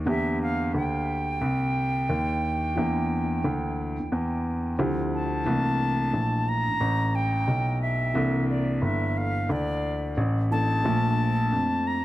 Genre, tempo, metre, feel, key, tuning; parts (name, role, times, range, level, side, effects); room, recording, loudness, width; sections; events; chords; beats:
hip hop; 89 BPM; 4/4; swing 61% on 16ths; A4 = 441 Hz
dark upright piano; accompaniment; 0.0-12.0 s; D3 to A4; -31 LUFS; equal; dub echo
dark baby grand piano; bass; 0.0-12.0 s; G1 to F2; -26 LUFS; equal
concert flute; melody; 0.1-12.0 s; D5 to Bb5; -29 LUFS; equal; dub echo
small room ambience; echo-heavy mix; -23 LUFS; side -15 dB against mid
0.0-5.5 A section; 5.5-12.0 B section
0.1 Em7b5; 4.8 Dm11; 5.5 C13; 10.8 Bbmaj7
| 0.06 0.74 1.41 2.08 | 2.76 3.43 4.11 4.78 | 5.46 6.13 6.80 7.48 | 8.15 8.83 9.50 10.18 | 10.85 11.52